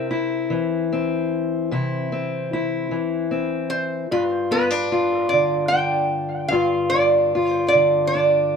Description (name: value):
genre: acoustic country blues, solo or duo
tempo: 50 BPM (dotted quarters)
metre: 12/8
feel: straight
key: G mixolydian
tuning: A4 = 440 Hz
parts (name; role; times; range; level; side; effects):
- lap resonator guitar; melody; 0.0-8.6 s; Bb4 to G5; -20 LUFS; right 2 dB; analog delay
- fingerpicked steel-string acoustic guitar; accompaniment; 0.0-8.6 s; G2 to F4; -21 LUFS; left 3 dB; none
room: light reverb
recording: close, detailed microphones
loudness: -19 LUFS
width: side -6 dB against mid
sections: 0.0-8.6 A section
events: none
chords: 0.0 C7; 4.1 G7(no3)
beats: 0.49 1.69 2.89 | 4.09 5.30 6.51 7.71